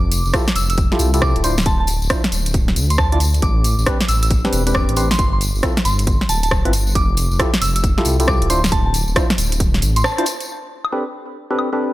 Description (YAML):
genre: UK garage, two-step garage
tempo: 136 BPM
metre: 4/4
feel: swing 64% on 16ths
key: A minor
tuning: A4 = 440 Hz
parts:
  - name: soft synth bell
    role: melody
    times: 0.0-10.2 s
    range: A5 to E6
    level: -24 LUFS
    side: right 1 dB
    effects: chorus, digital delay
  - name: dark detuned saw bass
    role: bass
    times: 0.0-10.0 s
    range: D1 to D2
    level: -18 LUFS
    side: equal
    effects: none
  - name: house drum kit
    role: drums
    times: 0.1-11.7 s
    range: hi-hat, rim click, snare drum, woodblock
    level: -21 LUFS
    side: equal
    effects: overdrive, low-pass filter on snare, low-pass filter on hats, low-pass filter on cymbals, low-pass filter on perc, low-pass filter on room
  - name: tambourine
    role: percussion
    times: 0.1-10.5 s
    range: none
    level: -28 LUFS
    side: left 2 dB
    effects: none
  - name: percussive organ stab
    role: stabs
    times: 0.3-11.9 s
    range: C4 to D5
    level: -24 LUFS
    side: equal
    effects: chorus, digital delay
  - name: electronic kick drum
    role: drums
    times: 0.3-9.7 s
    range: none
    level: -20 LUFS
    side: equal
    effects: overdrive
room: little or no reverb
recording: none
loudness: -15 LUFS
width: side -16 dB against mid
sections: 0.0-10.5 A section; 10.5-11.9 B section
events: break 10.0-10.5; band accent 10.0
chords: 0.0 Fmaj9; 1.4 Dm9; 3.4 Am11; 5.2 G13sus4; 7.0 Fmaj9; 8.5 Dm9; 10.5 Am11